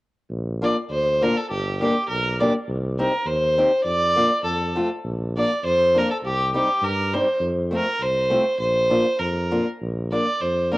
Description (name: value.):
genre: alpine folk, alpine dance band.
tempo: 101 BPM.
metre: 2/4.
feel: rubato.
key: Bb major.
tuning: A4 = 440 Hz.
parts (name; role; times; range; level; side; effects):
warm tuba; bass; 0.3-10.8 s; G1 to G2; -27 LUFS; equal; none.
warm fiddle; melody; 0.6-10.8 s; G4 to D5; -21 LUFS; equal; cassette tape.
fingerpicked acoustic archtop guitar; accompaniment; 0.6-10.8 s; G3 to G4; -25 LUFS; left 1 dB; none.
room: wet spring reverb, RT60 1.6 s, small room ambience.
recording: home recording on cassette.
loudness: -19 LUFS.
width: side -19 dB against mid.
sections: 0.3-9.8 A section.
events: none.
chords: 0.3 Bb; 1.5 Gm; 2.7 Cm; 3.8 Bb/F; 4.4 F; 5.0 Bb; 6.2 Cm; 7.4 F; 8.6 Bb.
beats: | 0.30 0.90 | 1.49 2.08 | 2.67 3.26 | 3.85 4.44 | 5.04 5.64 | 6.25 6.83 | 7.42 8.00 | 8.59 9.19 | 9.80 10.41.